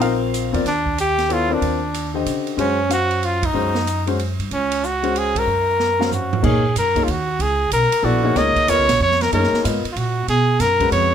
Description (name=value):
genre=modal jazz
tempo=187 BPM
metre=3/4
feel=swing 64% on 8ths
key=F# major from 6.4 s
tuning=A4 = 440 Hz
part: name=clear trumpet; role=melody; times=0.0-11.1 s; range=Db4 to D#5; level=-19 LUFS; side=equal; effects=none
part: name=clear concert grand piano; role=accompaniment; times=0.0-11.1 s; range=D3 to F5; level=-22 LUFS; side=left 4 dB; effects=none
part: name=upright bass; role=bass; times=0.0-11.1 s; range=Bb1 to Db3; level=-23 LUFS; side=right 1 dB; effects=none
part: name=open jazz drum kit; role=drums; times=0.0-11.0 s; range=crash cymbal, hi-hat, kick drum, ride cymbal, snare drum, toms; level=-27 LUFS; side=right 4 dB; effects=none
room=moderate small room reverb, RT60 0.5 s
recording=none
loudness=-16 LUFS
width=side -8 dB against mid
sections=0.0-6.4 A section; 6.4-11.1 B section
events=band accent 3.4, 5.3; drum fill 5.8-6.4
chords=0.0 Ebmaj9; 2.6 Gbmaj7sus2; 6.4 F#maj9; 10.3 Bmaj7sus2